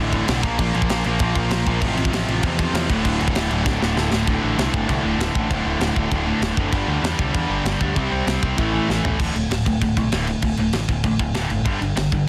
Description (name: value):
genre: punk rock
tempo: 195 BPM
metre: 4/4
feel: straight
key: unclear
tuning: A4 = 440 Hz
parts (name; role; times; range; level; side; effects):
- biting overdriven guitar; riff; 0.0-12.3 s; D2 to C4; -28 LUFS; equal; none
- fuzz guitar; riff; 0.0-9.2 s; D2 to C4; -29 LUFS; equal; distortion
- tight distorted guitar; riff; 0.0-12.3 s; D2 to C4; -28 LUFS; equal; distortion
- growling picked electric bass; bass; 0.0-12.2 s; D1 to E2; -27 LUFS; equal; overdrive
- tight metal drum kit; drums; 0.1-12.2 s; crash cymbal, kick drum, snare drum, toms; -27 LUFS; equal; none
room: light reverb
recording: dense, heavily limited modern master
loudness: -21 LUFS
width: mono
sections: 0.0-4.3 A section; 4.3-9.2 B section; 9.2-12.3 C section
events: drum fill 3.7-4.3, 8.9-9.2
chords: 0.4 Bb5; 1.8 F/A; 2.9 D5; 6.7 G5; 8.0 C5; 8.6 A5; 9.2 D5; 11.7 G5